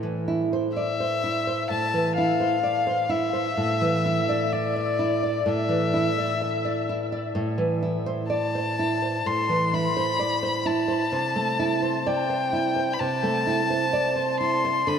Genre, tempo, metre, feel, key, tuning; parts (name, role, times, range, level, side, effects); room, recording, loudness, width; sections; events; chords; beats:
romantic duo for violin and classical guitar; 64 BPM; 4/4; rubato; A minor; A4 = 441 Hz
nylon-string guitar; accompaniment; 0.0-15.0 s; A2 to E5; -24 LUFS; right 2 dB
rich violin; melody; 0.8-15.0 s; D5 to C6; -26 LUFS; left 4 dB; analog delay
wet huge ambient reverb, RT60 4.2 s; dreamy mix soaked in reverb; -22 LUFS; side -7 dB against mid
0.0-15.0 A section
0.0 Am; 3.6 Asus4; 7.4 Am; 11.1 Am/C
0.77 1.71 2.64 | 3.58 4.53 5.47 6.43 | 7.37 8.31 9.26 10.20 | 11.13 12.07 13.00 13.93 | 14.87